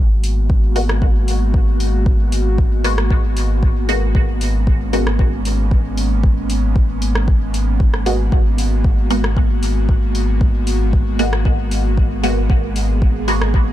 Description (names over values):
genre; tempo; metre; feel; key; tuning
dub techno; 115 BPM; 4/4; straight; G# minor; A4 = 440 Hz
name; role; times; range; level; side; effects
airy breathy pad; sustained chords; 0.2-13.7 s; G#3 to G#4; -24 LUFS; equal; chorus, sidechain pumping
warm sub bass; bass; 0.0-13.7 s; G#1; -18 LUFS; equal; sidechain pumping
deep house drum kit; drums; 0.2-13.5 s; hi-hat, rim click; -28 LUFS; equal; none
electronic kick drum; drums; 0.5-13.6 s; none; -16 LUFS; equal; none
filtered dub chord stab; stabs; 0.8-13.5 s; G#3 to F#4; -24 LUFS; equal; phaser, sidechain pumping, dub echo
room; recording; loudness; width
digital ambience; dark, warm production; -14 LUFS; side -13 dB against mid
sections
0.0-13.7 A section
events
none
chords
0.0 G#m9